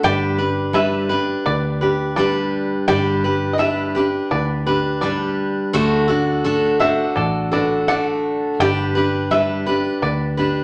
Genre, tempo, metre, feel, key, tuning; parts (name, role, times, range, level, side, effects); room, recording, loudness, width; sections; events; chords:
honky-tonk and classic country; 84 BPM; 4/4; straight; G major; A4 = 440 Hz
bluegrass banjo; melody; 0.0-10.6 s; A4 to G5; -24 LUFS; equal
picked steel-string acoustic guitar; accompaniment; 0.0-10.6 s; D3 to B4; -21 LUFS; equal
vintage muted fingered electric bass; bass; 0.0-10.6 s; G1 to D2; -28 LUFS; equal
wet large studio reverb, RT60 1.0 s; -19 LUFS; mono
0.0-10.6 A section
0.0 G; 5.7 D; 8.6 G